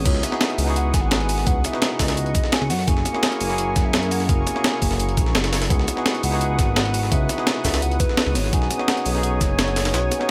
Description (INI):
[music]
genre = liquid drum and bass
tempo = 170 BPM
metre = 4/4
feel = straight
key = C# dorian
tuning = A4 = 440 Hz
[part]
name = tine electric piano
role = accompaniment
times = 0.0-10.3 s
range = A#3 to G#4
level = -29 LUFS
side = equal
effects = dub echo
[part]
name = lush unison pad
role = sustained chords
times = 0.0-10.3 s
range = A#4 to D#6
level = -36 LUFS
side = equal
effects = chorus, phaser
[part]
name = smooth synth bass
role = bass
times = 0.0-10.1 s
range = F#1 to F#2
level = -26 LUFS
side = equal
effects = none
[part]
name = hollow clarinet-like synth lead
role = melody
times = 0.1-10.3 s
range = B4 to G#5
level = -31 LUFS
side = equal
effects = chorus, delay
[part]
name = breakbeat sampler-style drum kit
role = drums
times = 0.1-10.3 s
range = cabasa, crash cymbal, hi-hat, snare drum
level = -27 LUFS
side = equal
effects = none
[part]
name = breakbeat sampler-style drum kit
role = drums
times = 0.1-10.2 s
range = hi-hat, snare drum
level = -30 LUFS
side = equal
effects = high-pass filter on hats, high-pass filter on snare
[part]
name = electronic kick drum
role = drums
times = 0.1-9.5 s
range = none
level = -24 LUFS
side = equal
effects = none
[sound]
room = light reverb, digital ambience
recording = none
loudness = -21 LUFS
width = mono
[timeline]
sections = 0.0-10.3 A section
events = kick drops out 9.9-10.3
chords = 0.1 C#m11; 2.7 F#9; 5.7 C#m11; 8.5 B69